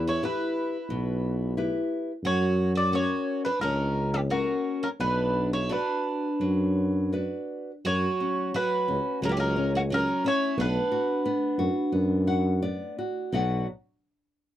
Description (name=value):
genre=fado-style ballad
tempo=87 BPM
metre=4/4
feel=rubato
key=B harmonic minor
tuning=A4 = 441 Hz
part: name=mandolin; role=melody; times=0.0-12.6 s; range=F#4 to D5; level=-29 LUFS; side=right 1 dB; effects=none
part: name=picked twelve-string acoustic guitar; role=second line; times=0.0-12.6 s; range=A#3 to F#4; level=-32 LUFS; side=right 2 dB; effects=none
part: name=nylon-string guitar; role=accompaniment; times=0.0-13.7 s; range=B2 to F#5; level=-30 LUFS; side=left 2 dB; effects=none
part: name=warm tuba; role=bass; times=0.0-13.7 s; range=B1 to F#2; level=-27 LUFS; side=equal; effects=none
room=little or no reverb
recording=dry, close 1970s-style studio recording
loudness=-24 LUFS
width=side -12 dB against mid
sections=0.0-7.8 A section; 7.8-13.3 B section; 13.3-14.6 C section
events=nylon-string guitar fill 11.9-13.3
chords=0.0 Em; 2.2 F#; 5.0 Bm; 7.8 F#5; 10.6 Bm